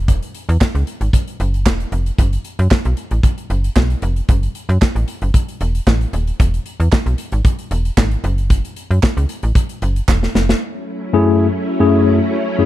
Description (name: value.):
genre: early-eighties boogie funk.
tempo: 114 BPM.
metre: 4/4.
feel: straight.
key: F# minor.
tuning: A4 = 441 Hz.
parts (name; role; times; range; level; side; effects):
slap-like FM bass; bass; 0.0-10.5 s; D#1 to F#2; -16 LUFS; equal; none.
modern studio drum kit; drums; 0.1-10.6 s; hi-hat, kick drum, snare drum; -16 LUFS; equal; none.
group handclap; percussion; 0.6-10.2 s; none; -26 LUFS; right 10 dB; none.
soft string machine; sustained chords; 10.6-12.7 s; F#3 to E4; -19 LUFS; equal; ensemble chorus.
mellow tine electric piano; accompaniment; 11.1-12.7 s; F#2 to G#4; -12 LUFS; left 3 dB; fast stereo tremolo.
room: studio reverb.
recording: none.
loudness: -14 LUFS.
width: side -14 dB against mid.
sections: 0.0-10.6 A section; 10.6-12.7 B section.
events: drum fill 10.1-10.6.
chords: 0.0 Esus2; 2.2 F#m; 6.4 E; 8.2 N.C.; 10.6 F#m7.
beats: | 0.08 0.61 1.13 1.66 | 2.19 2.71 3.24 3.77 | 4.29 4.82 5.34 5.87 | 6.40 6.92 7.45 7.98 | 8.50 9.03 9.55 10.08 | 10.61 11.13 11.66 12.19.